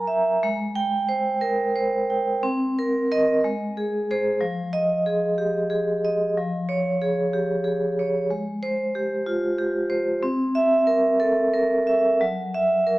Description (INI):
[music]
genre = classical, contemporary piece for solo vibraphone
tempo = 61 BPM (dotted quarters)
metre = 6/8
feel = rubato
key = unclear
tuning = A4 = 441 Hz
[part]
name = vibraphone with medium hard mallets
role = solo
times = 0.0-13.0 s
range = F3 to Bb5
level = -20 LUFS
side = right 1 dB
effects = none
[sound]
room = moderate recital hall reverb, RT60 1.5 s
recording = small speaker sound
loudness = -20 LUFS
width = side -18 dB against mid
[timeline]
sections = 0.4-13.0 A section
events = none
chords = 0.4 Abmaj7; 2.4 Cm7; 3.4 Ab; 4.4 Fm9; 6.4 Fmadd9; 8.3 Abmaj7; 10.2 C7; 12.2 Gb7